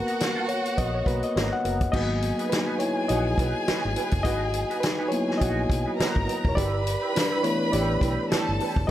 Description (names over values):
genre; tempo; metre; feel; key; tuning
lush 1970s-style soul; 104 BPM; 4/4; swing 58% on 16ths; unclear; A4 = 440 Hz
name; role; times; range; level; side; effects
rich studio violin section; second line; 0.0-8.9 s; F#4 to B5; -30 LUFS; equal; tape echo
reed electric piano; accompaniment; 0.0-8.9 s; E3 to F#5; -27 LUFS; left 1 dB; overdrive
electric guitar through a small old amp; riff; 0.1-8.9 s; B3 to C#5; -34 LUFS; right 5 dB; wah
vintage drum kit; drums; 0.1-8.9 s; crash cymbal, hi-hat, kick drum, snare drum; -28 LUFS; equal; none
vintage muted fingered electric bass; bass; 0.8-8.9 s; E1 to B1; -29 LUFS; equal; none
room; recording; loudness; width
light reverb, studio reverb; none; -23 LUFS; side -12 dB against mid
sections
0.0-1.9 A section; 1.9-8.9 B section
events
reed electric piano solo 0.0-1.9, 1.9-8.9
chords
0.0 G#m9 (rootless); 1.9 G#m7; 6.6 G6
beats
0.20 0.78 1.36 | 1.94 2.52 3.09 3.67 | 4.25 4.83 5.41 5.99 | 6.57 7.15 7.73 8.31 | 8.89